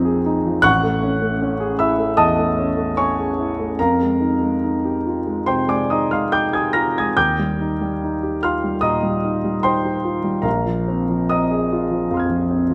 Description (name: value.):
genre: classical, impressionist solo piano.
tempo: 66-80 BPM.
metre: 4/4.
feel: rubato.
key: unclear.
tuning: A4 = 440 Hz.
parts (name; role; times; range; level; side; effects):
warm grand piano; solo; 0.0-12.7 s; A1 to Bb6; -20 LUFS; equal; none.
room: wet recital hall reverb, RT60 1.7 s.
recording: close, detailed microphones.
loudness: -20 LUFS.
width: mono.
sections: 0.0-12.7 A section.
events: none.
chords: 0.0 Bb9sus4; 0.6 Amaj7; 3.8 Fm11; 7.2 Ebadd9; 10.5 Bb9sus4.